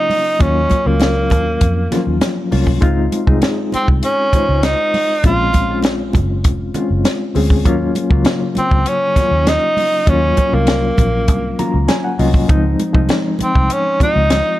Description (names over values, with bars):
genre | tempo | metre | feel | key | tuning
lush 1970s-style soul | 99 BPM | 4/4 | straight | Eb dorian | A4 = 440 Hz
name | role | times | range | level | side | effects
breathy tenor saxophone | melody | 0.0-14.6 s | Bb3 to F4 | -16 LUFS | right 1 dB | none
mellow reed electric piano | accompaniment | 0.0-14.6 s | Db3 to Bb5 | -19 LUFS | left 3 dB | fast tremolo
compact cocktail drum kit | drums | 0.1-14.4 s | hi-hat, kick drum, snare drum | -17 LUFS | equal | none
congas | percussion | 0.1-14.5 s | none | -25 LUFS | right 4 dB | none
vintage muted fingered electric bass | bass | 0.4-14.4 s | F1 to F2 | -18 LUFS | equal | none
room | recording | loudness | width
small room ambience | none | -13 LUFS | side -15 dB against mid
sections
0.0-14.6 A section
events
reed electric piano fill 11.3-12.5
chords
0.0 Ebm7; 2.8 Dbmaj9; 5.2 Bbm9; 7.7 Ebm7; 12.5 Dbmaj9